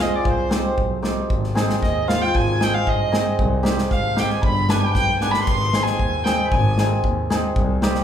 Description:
klezmer; 115 BPM; 2/4; straight; A4 = 440 Hz
dark violin; melody; 0.0-7.0 s; C5 to C6; -24 LUFS; right 1 dB
accordion; second line; 0.0-7.0 s; C5 to C6; -30 LUFS; right 1 dB; light tremolo tuning
cimbalom; accompaniment; 0.0-8.0 s; B3 to Ab4; -24 LUFS; equal
clear double bass; bass; 0.0-7.9 s; G1 to G2; -24 LUFS; equal
modern studio drum kit; drums; 0.3-8.0 s; crash cymbal, kick drum, snare drum; -22 LUFS; equal
moderate large studio reverb, RT60 1.2 s; band playing live in one room; -17 LUFS; side -9 dB against mid
0.0-1.3 A section; 1.3-8.0 B section
drum fill 4.9-5.5
0.3 Cm; 1.3 Ab; 3.4 Cm; 4.4 G; 5.5 Ab
| 0.26 0.78 | 1.30 1.82 | 2.35 2.87 | 3.39 3.91 | 4.43 4.95 | 5.47 5.99 | 6.51 7.03 | 7.55

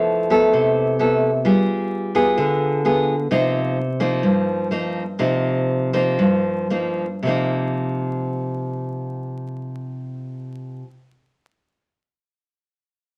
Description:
bossa nova; 110-130 BPM; 4/4; straight; C minor; A4 = 436 Hz
nylon-string guitar; solo; 0.0-10.9 s; G2 to A4; -21 LUFS; equal
wet studio reverb, RT60 0.8 s; tube saturation, vinyl crackle; -20 LUFS; mono
0.0-7.2 A section; 7.2-11.6 B section
slowing down 3.3-7.2
0.0 Fmaj7#11; 1.5 G7b9; 3.3 Cm7
0.07 0.54 1.00 | 1.46 1.92 2.38 2.85 | 3.31 3.77 4.24 4.71 | 5.20 5.69 6.19 6.71 | 7.25 7.79 8.33 8.88 | 9.42 9.96 10.51

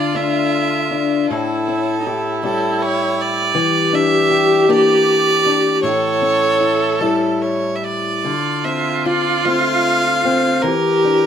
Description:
celtic folk, Celtic slow air; 48-54 BPM (dotted quarters); 6/8; rubato; D harmonic minor; A4 = 440 Hz
clear fiddle; melody; 0.0-11.3 s; A4 to F5; -19 LUFS; right 2 dB
rich viola; second line; 0.0-11.3 s; Eb4 to A4; -18 LUFS; equal
fingerpicked steel-string acoustic guitar; accompaniment; 0.0-11.3 s; A2 to G4; -20 LUFS; left 4 dB
wet studio reverb, RT60 0.6 s; band playing live in one room; -14 LUFS; side -8 dB against mid
0.0-11.3 A section
0.0 Dmadd9; 1.3 A7; 3.6 Em7b5; 5.8 A7; 8.2 Dm7; 10.6 Em7b5
0.14 | 1.29 2.43 | 3.55 4.69 | 5.83 7.01 | 8.25 9.45 | 10.63

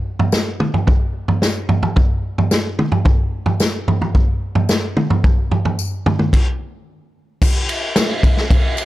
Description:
rock; 110 BPM; 4/4; straight
vintage drum kit; drums; 0.2-8.8 s; crash cymbal, kick drum, ride cymbal, snare drum, toms; -15 LUFS; equal
tambourine; percussion; 0.3-8.8 s; -30 LUFS; left 7 dB
little or no reverb; dark, warm production; -15 LUFS; side -16 dB against mid
0.0-7.4 A section; 7.4-8.8 B section
stop 6.3-7.4
0.34 | 0.88 1.43 1.97 2.52 | 3.06 3.61 4.15 4.70 | 5.24 5.79 6.33 6.87 | 7.42 7.96 8.50

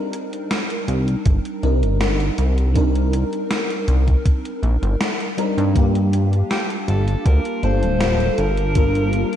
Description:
vaporwave; 80 BPM; 4/4; straight; A4 = 439 Hz
FM electric piano with soft pad layer; accompaniment; 0.0-9.4 s; G3 to Bb4; -24 LUFS; equal; phaser, ensemble chorus, ping-pong delay
gated 80s digital drum machine; drums; 0.1-9.4 s; hi-hat, snare drum; -26 LUFS; equal; gated reverb, gated reverb snare, vintage 12-bit sampler grit
chorused synth bass; bass; 0.9-9.2 s; D1 to G2; -18 LUFS; equal; tube saturation
electronic kick drum; drums; 1.3-8.9 s; -17 LUFS; equal; vintage 12-bit sampler grit
warbly tape-like pad; sustained chords; 6.2-9.4 s; F5 to A5; -34 LUFS; right 1 dB; chorus, built-in reverb
breathy alto saxophone; melody; 6.5-9.4 s; G4 to C5; -25 LUFS; left 2 dB; tape echo
light reverb; -17 LUFS; side -10 dB against mid
0.0-9.4 A section
0.0 Cm9; 5.8 Gm9
0.51 1.26 2.01 | 2.76 3.51 4.26 5.01 | 5.76 6.51 7.26 8.01 | 8.76

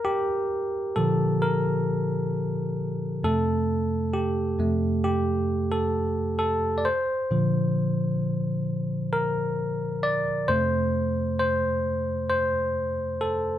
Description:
pop; 66 BPM; 4/4; straight; F major; A4 = 439 Hz
bell-like tine electric piano; solo; 0.0-13.6 s; F2 to D5; -23 LUFS; equal
light reverb; band playing live in one room; -23 LUFS; side -11 dB against mid
0.0-13.6 A section
tine electric piano solo 0.0-13.6
0.0 Bb; 3.2 Fadd9; 6.9 Bbadd9; 10.5 F
0.50 1.41 2.32 | 3.23 4.14 5.04 5.95 | 6.86 7.77 8.68 9.59 | 10.50 11.41 12.32 13.23

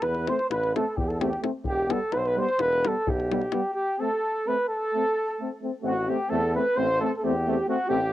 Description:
balkan folk, Balkan brass band; 258 BPM (eighths); 9/8; straight; A minor; A4 = 439 Hz
mellow flugelhorn; melody; 0.0-8.1 s; F#4 to C5; -26 LUFS; equal; plate reverb
warm flugelhorn; second line; 0.0-8.1 s; F#4 to C5; -31 LUFS; equal; cassette tape, plate reverb
clear tuba; bass; 0.0-8.1 s; E1 to E2; -31 LUFS; equal
davul; percussion; 0.0-3.6 s; -31 LUFS; left 4 dB
warm euphonium; accompaniment; 0.3-8.0 s; B3 to C4; -31 LUFS; left 6 dB; cassette tape, plate reverb
warm trombone; accompaniment; 0.3-8.0 s; G3 to A3; -33 LUFS; right 7 dB; cassette tape, plate reverb
moderate booth ambience, RT60 0.2 s; home recording on cassette; -23 LUFS; side -14 dB against mid
0.0-5.8 A section; 5.8-8.1 B section
break 3.7-5.8
0.0 Am; 1.6 Em; 3.7 Am
0.01 0.24 0.48 0.71 0.95 1.18 1.41 | 1.65 1.88 2.11 2.35 2.58 2.81 3.05 3.28 3.51 | 3.74 3.98 4.21 4.44 4.67 4.90 5.13 5.37 5.60 | 5.83 6.06 6.29 6.52 6.75 6.98 7.21 7.43 7.66 | 7.89 8.12

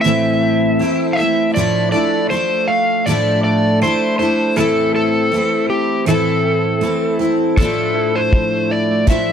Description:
acoustic pop; 80 BPM; 4/4; swing 55% on 16ths; A4 = 440 Hz
overdriven slide guitar; melody; 0.0-9.3 s; G4 to F5; -18 LUFS; equal
picked steel-string acoustic guitar; accompaniment; 0.0-9.3 s; A2 to A4; -17 LUFS; left 1 dB; double-tracked left and right
direct-recorded clean electric guitar; arpeggios; 0.0-9.3 s; E3 to A4; -25 LUFS; right 8 dB
cloth-damped thuddy drum kit; drums; 7.6-9.3 s; crash cymbal, kick drum; -14 LUFS; equal
small room ambience; dry, close 1970s-style studio recording; -14 LUFS; side -8 dB against mid
0.0-7.6 A section; 7.6-9.3 B section
0.0 Am; 1.6 Dmadd9/A; 4.6 Am; 7.6 Dmadd9/A
0.05 0.80 | 1.56 2.31 3.06 3.82 | 4.57 5.32 6.08 6.83 | 7.58 8.33 9.08

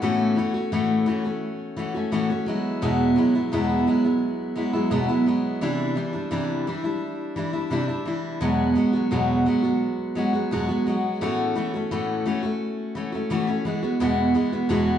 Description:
pop; 86 BPM; 4/4; straight; E mixolydian; A4 = 440 Hz
picked steel-string acoustic guitar; solo; 0.0-15.0 s; E2 to F#4; -21 LUFS; equal
wet large studio reverb, RT60 1.3 s; band playing live in one room, nothing above 10.5 kHz; -21 LUFS; side -9 dB against mid
0.0-15.0 A section
0.0 A6; 2.5 Eadd9; 5.6 Cadd9; 8.4 Eadd9; 11.2 A6; 13.6 Eadd9
| 0.02 0.72 1.42 2.12 | 2.81 3.51 4.21 4.91 | 5.61 6.31 7.01 7.71 | 8.41 9.11 9.81 10.50 | 11.20 11.90 12.60 13.29 | 13.99 14.69

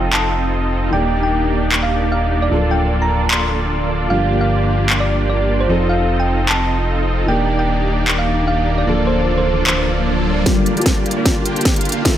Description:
future bass; 151 BPM; 4/4; swing 54% on 16ths, half-time; G minor; A4 = 440 Hz
thumb-piano-like synth pluck; melody; 0.0-10.4 s; C5 to C6; -22 LUFS; right 1 dB; chorus, sidechain pumping, dub echo
dark grand piano; accompaniment; 0.0-12.2 s; D3 to D5; -24 LUFS; left 2 dB; sidechain pumping, digital delay
supersaw chords; riff; 0.0-12.2 s; Bb3 to G5; -20 LUFS; right 2 dB; wide subtle chorus, sidechain pumping, low-pass filter
fat analog bass; bass; 0.0-10.4 s; D1 to G1; -19 LUFS; equal; sidechain pumping
trap drum kit; drums; 0.1-12.1 s; handclaps, hi-hat, snare drum; -19 LUFS; equal
riser; sound effects; 9.1-12.2 s; -25 LUFS; left 3 dB
electronic kick drum; drums; 10.5-12.1 s; -18 LUFS; equal
light reverb, digital ambience; -14 LUFS; side -11 dB against mid
0.0-10.5 A section; 10.5-12.2 B section
riser 9.1-10.5; build-up 10.5-12.2; drum fill 10.5-12.2
0.0 F7; 0.9 Ebmaj7; 2.5 Bbmaj7/D; 4.1 Gm7; 5.7 F7; 7.3 Ebmaj7; 8.9 Bbmaj7/D; 10.5 Gm7
0.13 0.53 | 0.93 1.32 1.72 2.12 | 2.52 2.91 3.31 3.71 | 4.11 4.50 4.90 5.30 | 5.70 6.09 6.49 6.89 | 7.28 7.68 8.08 8.48 | 8.87 9.27 9.67 10.06 | 10.46 10.86 11.26 11.65 | 12.05

